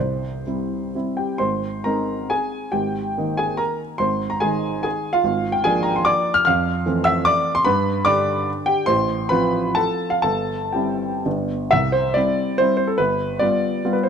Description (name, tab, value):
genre	classical, romantic triple-time dance for piano with dotted rhythms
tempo	114-160 BPM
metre	3/4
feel	rubato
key	Ab major, C major from 6.5 s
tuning	A4 = 443 Hz
part	warm baby grand piano	solo	0.0-14.1 s	G1 to F6	-18 LUFS	equal	none
room	light reverb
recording	close, detailed microphones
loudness	-18 LUFS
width	side -7 dB against mid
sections	0.0-1.4 A section; 1.4-11.7 B section; 11.7-14.1 A section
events	none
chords	0.0 C; 1.4 Ab; 2.7 Eb/Ab; 4.0 Ab; 5.3 Bb7/Ab; 6.5 Fmaj7; 7.7 G; 8.9 F/A; 10.2 C/G; 11.3 G; 11.7 C; 13.0 G7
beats	0.46 0.94 | 1.41 1.86 2.31 | 2.74 3.17 3.60 | 4.01 4.44 4.86 | 5.25 5.66 6.08 | 6.46 6.86 7.27 | 7.66 8.06 8.48 | 8.88 9.31 9.78 | 10.25 10.76 11.26 | 11.72 12.16 12.59 | 13.00 13.42 13.86